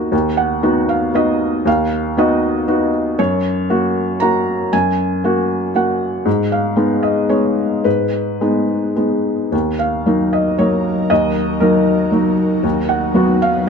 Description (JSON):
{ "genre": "neoclassical piano and strings", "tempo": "117 BPM", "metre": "3/4", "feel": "rubato", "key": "Eb minor", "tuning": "A4 = 440 Hz", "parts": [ { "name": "felt-muted upright piano", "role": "accompaniment", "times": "0.0-13.7 s", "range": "Eb2 to Bb5", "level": "-14 LUFS", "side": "equal", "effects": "none" }, { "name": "ethereal airy pad", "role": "sustained chords", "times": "10.2-13.7 s", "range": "Gb3 to B4", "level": "-22 LUFS", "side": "left 3 dB", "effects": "ensemble chorus, built-in reverb" } ], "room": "light reverb", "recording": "close, detailed microphones", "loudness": "-14 LUFS", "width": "side -6 dB against mid", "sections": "0.0-9.5 A section; 9.5-13.7 A section", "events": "none", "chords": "0.1 B/D#; 3.2 Gb; 6.3 Abm; 9.5 Ebm; 12.6 B/D#" }